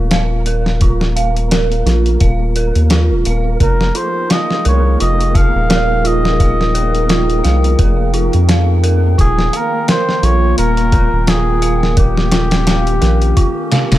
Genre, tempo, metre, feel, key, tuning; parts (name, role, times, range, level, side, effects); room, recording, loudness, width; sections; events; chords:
trip hop; 86 BPM; 4/4; swing 56% on 16ths; A4 = 440 Hz
dark detuned synth bell; arpeggios; 0.0-14.0 s; F4 to F5; -20 LUFS; right 4 dB; chorus, phaser, low-pass filter, tape echo
soft dub sub bass; bass; 0.0-14.0 s; Eb1 to F2; -14 LUFS; equal
flickering grainy texture; texture; 0.0-14.0 s; Bb3 to Bb4; -26 LUFS; left 2 dB; built-in reverb
dusty soul sampler-style drum kit; drums; 0.1-14.0 s; hi-hat, kick drum, snare drum; -16 LUFS; equal
trumpet with cup mute; melody; 3.6-14.0 s; G4 to F5; -19 LUFS; equal; vintage 12-bit sampler grit, tape echo
warbly tape-like pad; sustained chords; 3.6-14.0 s; Eb3 to G5; -22 LUFS; left 1 dB; chorus, built-in reverb
little or no reverb; -11 LUFS; side -14 dB against mid
0.0-14.0 A section
0.0 Ebsus2; 3.6 Fm11; 9.2 Ebadd9; 12.0 Eb7